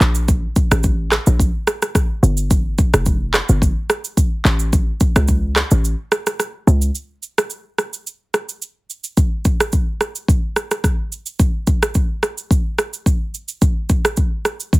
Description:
afrobeats; 108 BPM; 4/4; swing 55% on 16ths; A4 = 440 Hz
short 808-style bass; bass; 0.0-6.9 s; F1 to C#2; -16 LUFS; equal
afro-pop drum kit; drums; 0.0-14.8 s; handclaps, kick drum, rim click, shaker, toms; -16 LUFS; equal
little or no reverb; heavily compressed radio sound, multiband compression; -16 LUFS; side -21 dB against mid
0.0-7.0 A section; 7.0-14.8 B section
break 5.8-7.0
| 0.28 0.84 1.40 1.95 | 2.51 3.06 3.62 4.17 | 4.73 5.28 5.84 6.39 | 6.95 7.51 8.06 8.62 | 9.17 9.73 10.28 10.84 | 11.39 11.95 12.51 13.06 | 13.62 14.17 14.73

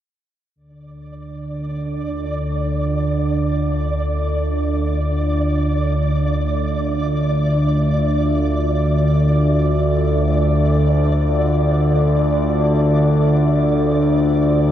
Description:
dark ambient drone; free time; D minor; A4 = 441 Hz
deep dark ambient pad; sustained chords; 2.3-14.7 s; A3 to E5; -27 LUFS; equal; chorus, built-in reverb
analog drone; drone; 1.0-14.7 s; D2 to D3; -17 LUFS; equal; chorus
flickering grainy texture; texture; 1.1-14.7 s; D5; -25 LUFS; equal; built-in reverb
wet huge ambient reverb, RT60 7.3 s; dark, warm production; -16 LUFS; side -11 dB against mid
0.6-14.7 A section
fade-in on ambient pad 0.6-14.7
0.6 Dmadd9
free time

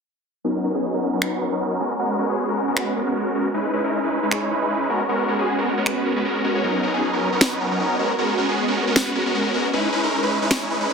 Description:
future bass; 155 BPM; 4/4; swing 55% on 16ths, half-time; G# minor; A4 = 440 Hz
supersaw chords; riff; 0.4-10.9 s; F#3 to C#5; -20 LUFS; equal; phaser, low-pass filter, dub echo
electronic finger snaps and snare drum; drums; 1.2-10.6 s; -21 LUFS; equal; soft clipping on snare
wet digital room reverb, RT60 1.0 s; dense, heavily limited modern master; -19 LUFS; side -5 dB against mid
0.4-10.9 A section
filter sweep on supersaw synth 0.4-10.9
0.4 Bmaj9; 1.8 G#m11; 3.5 C#m9; 4.9 G#m11; 6.6 Bmaj9; 8.0 G#m11; 9.7 C#m9
| 0.44 0.83 1.22 1.60 | 1.99 2.38 2.77 3.15 | 3.54 3.93 4.31 4.70 | 5.09 5.48 5.86 6.25 | 6.64 7.02 7.41 7.80 | 8.19 8.57 8.96 9.35 | 9.73 10.12 10.51 10.89

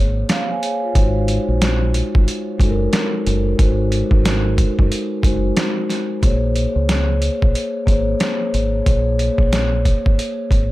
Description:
hip hop, boom-bap hip-hop; 91 BPM; 4/4; swing 59% on 16ths; Bb minor; A4 = 441 Hz
vibraphone with soft mallets; accompaniment; 0.0-10.7 s; Ab3 to Ab5; -21 LUFS; left 1 dB; high-pass filter, low-pass filter, dub echo
deep dub fingered electric bass; bass; 0.0-10.7 s; Gb1 to Db2; -19 LUFS; equal
trip hop sampler-style drum kit; drums; 0.3-10.7 s; hi-hat, kick drum, snare drum; -17 LUFS; equal; overdrive
little or no reverb; echo-heavy mix; -15 LUFS; side -17 dB against mid
0.0-6.2 A section; 6.2-10.7 B section
0.0 Bbm9; 1.0 Ab7; 6.2 Bbm9
0.29 | 0.95 1.61 2.27 2.93 | 3.59 4.25 4.91 5.57 | 6.23 6.89 7.55 8.21 | 8.87 9.53 10.18

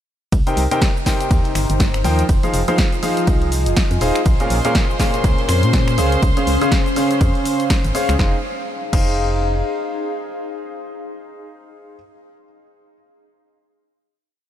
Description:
piano house; 122 BPM; 4/4; swing 58% on 16ths; F minor; A4 = 440 Hz
organ-like FM bass; bass; 0.3-9.6 s; Eb1 to Bb2; -20 LUFS; equal; tube saturation, sidechain pumping
electronic kick drum; drums; 0.3-9.1 s; -18 LUFS; equal
punchy analog drum machine; drums; 0.3-9.1 s; cabasa, crash cymbal, finger snaps, hi-hat, ride cymbal, snare drum; -25 LUFS; equal
warbly tape-like pad; texture; 1.4-11.4 s; Db4 to Bb5; -25 LUFS; left 2 dB; chorus, built-in reverb, phaser, sidechain pumping
bright grand piano; riff; 0.5-12.0 s; Bb2 to G5; -21 LUFS; equal; vintage 12-bit sampler grit, sidechain pumping, tape echo
clear chamber violin section; sustained chords; 4.3-8.2 s; C5 to C6; -27 LUFS; right 1 dB; sidechain pumping
light reverb; -15 LUFS; side -11 dB against mid
0.3-8.2 drop; 8.2-12.1 final chord
drop 0.3-8.2
0.3 Cm7; 2.3 Fm7; 4.3 Bbm7; 6.0 Dbmaj7; 8.2 Fm7
| 0.32 0.82 1.31 1.80 | 2.29 2.78 3.27 3.77 | 4.26 4.75 5.24 5.73 | 6.22 6.72 7.21 7.70 | 8.19 8.68 9.18 9.67 | 10.16 10.65 11.14 11.63

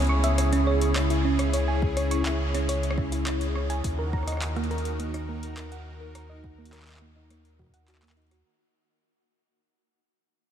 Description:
IDM; 104 BPM; 4/4; straight; A4 = 440 Hz
phased analog pad; sustained chords; 0.0-8.4 s; C#3 to A#4; -30 LUFS; equal; phaser, chorus
warm sub bass; bass; 0.0-8.4 s; C#2 to D#2; -27 LUFS; equal
electro analog drum machine; drums; 0.0-8.4 s; handclaps, hi-hat, rim click; -34 LUFS; left 1 dB; analog delay
thumb-piano-like synth pluck; arpeggios; 0.1-8.4 s; A#3 to C#6; -31 LUFS; right 2 dB; chorus, diffuse ambient delay
electronic kick drum; drums; 1.8-7.7 s; -30 LUFS; equal
moderate huge ambient reverb, RT60 8.2 s; dreamy mix soaked in reverb; -24 LUFS; side -9 dB against mid
0.0-8.5 A section
fade-out 0.0-8.5; filter sweep on synth arpeggio sound 0.0-8.5
0.0 C#m; 3.8 D#m
0.38 0.96 | 1.53 2.11 2.69 3.27 | 3.84 4.42 5.00 5.57 | 6.15 6.73 7.30 7.88

